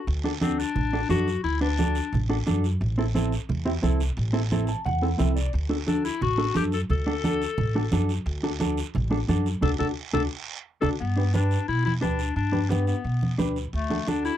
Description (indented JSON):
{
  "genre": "latin, cumbia",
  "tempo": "176 BPM",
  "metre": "4/4",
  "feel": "straight",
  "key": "unclear",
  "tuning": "A4 = 439 Hz",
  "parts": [
    { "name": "clear clarinet", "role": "second line", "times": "0.0-2.3, 5.9-14.4 s", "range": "A3 to A4", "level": "-28 LUFS", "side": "left 7 dB", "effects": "none" },
    { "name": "upright bass", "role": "bass", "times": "0.1-14.3 s", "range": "A1 to B2", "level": "-26 LUFS", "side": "equal", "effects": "none" },
    { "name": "congas", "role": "percussion", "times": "0.1-14.2 s", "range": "none", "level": "-30 LUFS", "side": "right 3 dB", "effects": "none" },
    { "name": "guiro", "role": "percussion", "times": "0.1-14.4 s", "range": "none", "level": "-40 LUFS", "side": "right 10 dB", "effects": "none" },
    { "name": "mellow electric guitar", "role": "accompaniment", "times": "0.2-14.3 s", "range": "C4 to A5", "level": "-27 LUFS", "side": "equal", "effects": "none" }
  ],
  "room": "light reverb",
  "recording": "dry, close 1970s-style studio recording",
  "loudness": "-23 LUFS",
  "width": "side -11 dB against mid",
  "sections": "0.1-11.0 A section; 11.0-14.4 B section",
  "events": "clarinet solo 0.1-11.0, 11.0-14.4; clean electric guitar fill 4.5-5.5; band accent 9.6-11.0; drum fill 10.1-11.0",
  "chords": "0.1 D; 2.8 Am; 5.5 D; 11.0 G; 13.7 D"
}